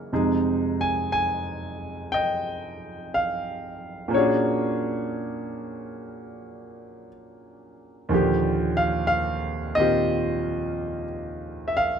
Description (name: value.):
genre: jazz ballad.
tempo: 60 BPM.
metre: 4/4.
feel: swing 67% on 8ths.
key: Eb major.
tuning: A4 = 438 Hz.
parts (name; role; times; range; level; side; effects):
clear concert grand piano; solo; 0.0-12.0 s; Eb2 to Ab5; -23 LUFS; equal; none.
room: light reverb.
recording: close, detailed microphones.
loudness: -22 LUFS.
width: side -7 dB against mid.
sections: 0.0-12.0 A section.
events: none.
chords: 0.1 Fm9; 4.1 Bb7alt; 8.1 Ebmaj9.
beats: | 0.11 1.12 2.13 3.13 | 4.13 5.13 6.12 7.12 | 8.11 9.10 10.10 11.10.